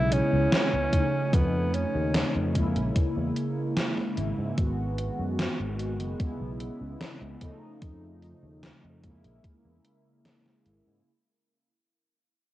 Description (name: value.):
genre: vaporwave.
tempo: 74 BPM.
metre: 4/4.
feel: straight.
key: unclear.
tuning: A4 = 440 Hz.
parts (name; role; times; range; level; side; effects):
mellow tenor saxophone; melody; 0.0-2.6 s; B3 to E4; -30 LUFS; equal; tape echo.
mellow synth brass; accompaniment; 0.0-11.1 s; C#3 to F#4; -30 LUFS; equal; lush chorus, cassette tape, analog delay.
sustaining fretless electric bass; bass; 0.0-11.0 s; F#1 to G#2; -30 LUFS; equal; wide subtle chorus.
gated 80s digital drum machine; drums; 0.1-10.8 s; hi-hat, snare drum; -29 LUFS; equal; gated reverb, gated reverb snare, small room ambience, cassette tape.
electronic kick drum; drums; 0.9-9.6 s; none; -26 LUFS; equal; small room ambience, cassette tape.
room: light reverb, digital ambience.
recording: home recording on cassette.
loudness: -25 LUFS.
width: side -15 dB against mid.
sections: 0.0-11.1 A section.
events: fade-out 0.0-11.1.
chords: 0.0 C#m7; 0.9 Faug7; 2.5 A#m7b5; 4.6 G#m7; 6.2 C#m7; 7.4 Faug7; 9.0 A#m7b5.